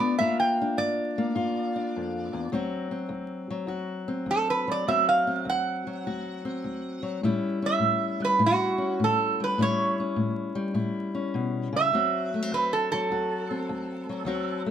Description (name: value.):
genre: acoustic country blues, solo or duo.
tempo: 102 BPM.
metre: 4/4.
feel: swing 67% on 8ths.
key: D mixolydian.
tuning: A4 = 443 Hz.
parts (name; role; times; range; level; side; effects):
metal-body resonator slide guitar; melody; 0.0-14.6 s; F#4 to G5; -25 LUFS; right 3 dB; none.
fingerpicked steel-string acoustic guitar; accompaniment; 0.0-14.7 s; D2 to F#4; -28 LUFS; left 2 dB; none.
room: light reverb.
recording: vinyl crackle.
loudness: -24 LUFS.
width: side -9 dB against mid.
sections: 0.0-14.7 A section.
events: none.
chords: 0.2 Gm7; 2.5 D7; 7.2 A7; 11.9 D7.